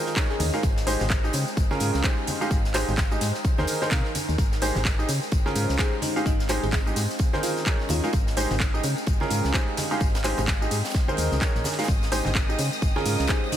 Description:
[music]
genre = piano house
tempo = 128 BPM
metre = 4/4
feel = swing 59% on 16ths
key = Ab major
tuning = A4 = 440 Hz
[part]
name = bright upright piano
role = riff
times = 0.0-13.6 s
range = Db3 to F5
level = -28 LUFS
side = right 1 dB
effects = sidechain pumping, analog delay
[part]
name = downlifter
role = sound effects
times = 0.4-0.6 s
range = none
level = barely audible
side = none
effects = none
[part]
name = warbly tape-like pad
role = texture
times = 0.0-13.6 s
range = Ab3 to F5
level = -35 LUFS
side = left 1 dB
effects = chorus, built-in reverb, phaser, sidechain pumping
[part]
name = bell-like FM electric piano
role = melody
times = 0.1-0.7, 5.5-8.1, 13.0-13.6 s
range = Eb4 to Ab4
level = -36 LUFS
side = left 1 dB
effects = chorus, phaser, analog delay
[part]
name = crisp fusion drum kit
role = drums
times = 0.1-13.6 s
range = hi-hat, snare drum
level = -39 LUFS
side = right 3 dB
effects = none
[part]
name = house drum kit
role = drums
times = 0.1-13.6 s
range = handclaps, hi-hat, tambourine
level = -30 LUFS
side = equal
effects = none
[part]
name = tambourine and congas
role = percussion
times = 0.1-13.6 s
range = none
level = -36 LUFS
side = equal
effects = none
[part]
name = electronic kick drum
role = drums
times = 0.2-13.4 s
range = none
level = -24 LUFS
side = equal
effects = none
[part]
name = solid FM bass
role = bass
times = 0.4-13.3 s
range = Ab1 to Db3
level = -27 LUFS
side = equal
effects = sidechain pumping
[part]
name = warm symphonic violin section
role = sustained chords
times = 11.9-13.6 s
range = Eb5 to Eb6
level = -34 LUFS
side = equal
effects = sidechain pumping
[sound]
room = light reverb, small room ambience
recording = none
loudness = -22 LUFS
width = side -11 dB against mid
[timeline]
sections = 0.0-13.6 A section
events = none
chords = 0.0 Eb7sus4; 0.6 Abmaj7; 1.3 Dbmaj7; 2.3 Abmaj7; 3.4 Eb7sus4; 4.4 Abmaj7; 5.1 Dbmaj7; 6.0 Abmaj7; 7.2 Eb7sus4; 8.1 Abmaj7; 8.8 Dbmaj7; 9.8 Abmaj7; 10.9 Eb7sus4; 11.9 Abmaj7; 12.6 Dbmaj7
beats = 0.17 | 0.63 1.10 1.57 2.04 | 2.51 2.98 3.45 3.92 | 4.38 4.85 5.32 5.79 | 6.26 6.73 7.20 7.67 | 8.13 8.60 9.07 9.54 | 10.01 10.48 10.95 11.41 | 11.88 12.35 12.82 13.29

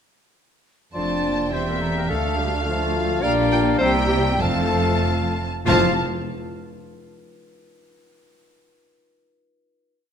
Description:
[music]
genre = quick classical-period movement for symphony orchestra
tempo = 94-108 BPM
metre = 2/4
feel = rubato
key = F major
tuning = A4 = 440 Hz
[part]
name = rich studio violin section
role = melody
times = 0.9-6.0 s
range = E5 to A5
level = -28 LUFS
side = left 2 dB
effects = none
[part]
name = clear clarinet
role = second line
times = 0.9-5.9 s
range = F4 to D5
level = -28 LUFS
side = left 1 dB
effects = none
[part]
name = clear oboe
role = second line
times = 0.9-5.9 s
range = E5 to A5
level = -31 LUFS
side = right 1 dB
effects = none
[part]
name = silver concert flute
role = second line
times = 0.9-6.0 s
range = A5 to C6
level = -32 LUFS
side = left 3 dB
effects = none
[part]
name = clear bassoon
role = accompaniment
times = 0.9-5.9 s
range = F3 to A3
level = -29 LUFS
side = equal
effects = none
[part]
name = warm symphonic cello section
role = bass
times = 0.9-6.0 s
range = D2 to C3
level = -27 LUFS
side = right 2 dB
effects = none
[part]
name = rich chamber violin section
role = second line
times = 1.0-6.0 s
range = F5 to G5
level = -34 LUFS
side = left 2 dB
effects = none
[part]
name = rich chamber viola section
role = accompaniment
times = 1.0-6.0 s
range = A3 to D4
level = -31 LUFS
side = right 3 dB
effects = none
[part]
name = dark French horn section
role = sustained chords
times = 1.0-5.9 s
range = F3 to F4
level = -26 LUFS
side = left 5 dB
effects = none
[part]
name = rich symphonic double bass section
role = bass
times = 1.0-6.0 s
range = E1 to D2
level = -27 LUFS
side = right 3 dB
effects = none
[part]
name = timpani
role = percussion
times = 4.4-6.0 s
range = F2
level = -29 LUFS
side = equal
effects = none
[sound]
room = wet scoring stage reverb, RT60 1.9 s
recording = none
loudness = -19 LUFS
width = side -8 dB against mid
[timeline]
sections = 1.0-5.7 A section; 5.7-6.9 final chord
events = none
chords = 1.0 F; 1.5 C/E; 2.1 Dm; 3.2 Gm7/Bb; 3.8 C7; 4.4 F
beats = | 0.95 1.53 | 2.10 2.66 | 3.22 3.80 | 4.41 5.04 | 5.67

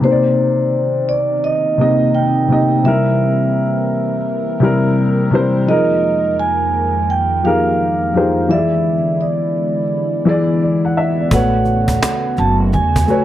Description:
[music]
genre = lo-fi hip hop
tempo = 85 BPM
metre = 4/4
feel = swing 64% on 16ths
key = unclear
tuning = A4 = 440 Hz
[part]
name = vibraphone with soft mallets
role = melody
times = 0.0-13.2 s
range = C5 to A5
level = -18 LUFS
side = right 2 dB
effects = low-pass filter, analog delay
[part]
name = dark upright piano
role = accompaniment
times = 0.0-13.2 s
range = C3 to F#5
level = -16 LUFS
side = left 2 dB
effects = cassette tape, low-pass filter
[part]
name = lush unison pad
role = sustained chords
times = 0.0-13.2 s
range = F2 to Bb4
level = -23 LUFS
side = equal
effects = chorus, low-pass filter
[part]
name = upright bass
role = bass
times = 11.3-13.0 s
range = F#1 to E2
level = -17 LUFS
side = equal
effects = none
[part]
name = cajon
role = drums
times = 11.3-13.2 s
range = none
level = -20 LUFS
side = equal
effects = none
[sound]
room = light reverb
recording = none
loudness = -13 LUFS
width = side -12 dB against mid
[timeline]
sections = 0.0-13.2 A section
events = none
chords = 0.0 Cm9; 2.8 C7; 5.7 Fm11; 8.5 E7; 11.3 A69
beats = | 0.02 0.72 1.43 2.14 | 2.84 3.55 4.25 4.96 | 5.67 6.37 7.08 7.78 | 8.49 9.20 9.90 10.61 | 11.31 12.02 12.72

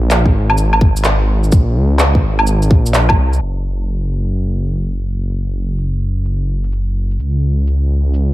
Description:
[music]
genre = future garage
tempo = 127 BPM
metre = 4/4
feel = swing 65% on 16ths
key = Bb minor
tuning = A4 = 440 Hz
[part]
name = swelling detuned saw bass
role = bass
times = 0.0-8.3 s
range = Gb1 to Db2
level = -14 LUFS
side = equal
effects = tube saturation
[part]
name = electronic handclaps, shaker and woodblock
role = drums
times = 0.1-8.3 s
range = none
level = -17 LUFS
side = equal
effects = low-pass filter on snare, low-pass filter on perc, low-pass filter on room
[part]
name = electronic kick drum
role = drums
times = 0.3-3.2 s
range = none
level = -11 LUFS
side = equal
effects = none
[sound]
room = little or no reverb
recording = low-pass filter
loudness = -13 LUFS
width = side -16 dB against mid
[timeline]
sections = 0.0-3.4 A section; 3.4-8.3 B section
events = none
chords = none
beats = 0.11 0.58 1.05 | 1.52 2.00 2.47 2.94 | 3.41 3.89 4.36 4.83 | 5.30 5.78 6.25 6.72 | 7.19 7.67 8.14

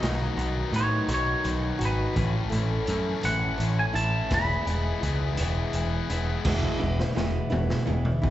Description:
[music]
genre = quiet-loud alternative rock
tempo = 56 BPM (dotted quarters)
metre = 6/8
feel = straight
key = unclear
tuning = A4 = 441 Hz
[part]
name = twangy electric guitar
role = melody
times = 0.0-6.1 s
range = B4 to B5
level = -30 LUFS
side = right 1 dB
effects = lush chorus, slapback echo, digital delay
[part]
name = picked old ladder-braced acoustic guitar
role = arpeggios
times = 0.0-8.3 s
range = E2 to F#4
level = -33 LUFS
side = right 2 dB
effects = slapback echo
[part]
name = distorted electric guitar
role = riff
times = 0.0-8.3 s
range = E2 to E4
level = -31 LUFS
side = left 6 dB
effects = overdrive
[part]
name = growling picked electric bass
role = bass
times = 0.0-8.3 s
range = E1 to A2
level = -27 LUFS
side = equal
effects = overdrive
[part]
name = raw garage drum kit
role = drums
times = 0.0-8.3 s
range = crash cymbal, hi-hat, kick drum, snare drum, toms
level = -32 LUFS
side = equal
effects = none
[part]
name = crunchy overdriven guitar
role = riff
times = 6.5-8.3 s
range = E2 to E3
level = -34 LUFS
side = right 9 dB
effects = slapback echo
[sound]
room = studio reverb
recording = live gig heard through the venue's PA, club reverb, nothing above 7.9 kHz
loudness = -24 LUFS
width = side -13 dB against mid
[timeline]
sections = 0.0-6.5 A section; 6.5-8.3 B section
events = half time 0.0-6.5; drum fill 6.5-8.3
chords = 0.0 B; 2.2 A; 4.3 E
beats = | 0.03 1.10 | 2.17 3.24 | 4.31 5.38 | 6.45 7.52

